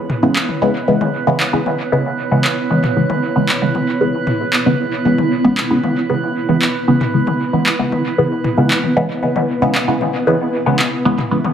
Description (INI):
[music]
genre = dub techno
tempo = 115 BPM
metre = 4/4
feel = straight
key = C# minor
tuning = A4 = 440 Hz
[part]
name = granular cloud pad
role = sustained chords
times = 0.0-11.5 s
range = B3 to C#5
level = -21 LUFS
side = equal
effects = built-in reverb
[part]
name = drifting glass-harmonics texture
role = texture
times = 0.0-11.5 s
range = B4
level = -25 LUFS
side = right 6 dB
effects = chorus, built-in reverb
[part]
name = electronic toms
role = percussion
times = 0.1-11.5 s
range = none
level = -24 LUFS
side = left 3 dB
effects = studio reverb, dub echo
[part]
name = filtered dub chord stab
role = stabs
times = 0.2-11.4 s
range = C#3 to B3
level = -16 LUFS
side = equal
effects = phaser, dub echo
[part]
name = electronic handclaps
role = drums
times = 0.4-10.9 s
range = none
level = -21 LUFS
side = equal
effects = studio reverb, dub echo
[sound]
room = moderate digital room reverb, RT60 1.1 s, digital ambience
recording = none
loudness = -14 LUFS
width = side -8 dB against mid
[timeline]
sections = 0.0-11.5 A section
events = filter sweep on ambient pad 0.0-11.5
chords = 0.0 C#m7